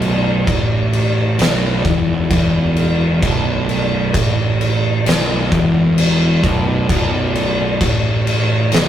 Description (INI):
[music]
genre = stoner and doom metal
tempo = 66 BPM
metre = 4/4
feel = straight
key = unclear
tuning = A4 = 440 Hz
[part]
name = fuzz guitar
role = riff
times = 0.0-8.9 s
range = B1 to A2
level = -17 LUFS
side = right 1 dB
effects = distortion
[part]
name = fuzz picked electric bass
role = bass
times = 0.0-8.9 s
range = B0 to A1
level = -23 LUFS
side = equal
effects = overdrive
[part]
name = oversized low-tuned drum kit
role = drums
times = 0.0-8.9 s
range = crash cymbal, kick drum, snare drum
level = -17 LUFS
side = left 1 dB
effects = none
[sound]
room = light reverb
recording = rough rehearsal-room recording, tube saturation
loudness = -13 LUFS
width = side -10 dB against mid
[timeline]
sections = 0.0-8.9 A section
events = none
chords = 0.0 B7sus4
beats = 0.47 1.39 2.31 | 3.22 4.14 5.06 5.97 | 6.89 7.81 8.72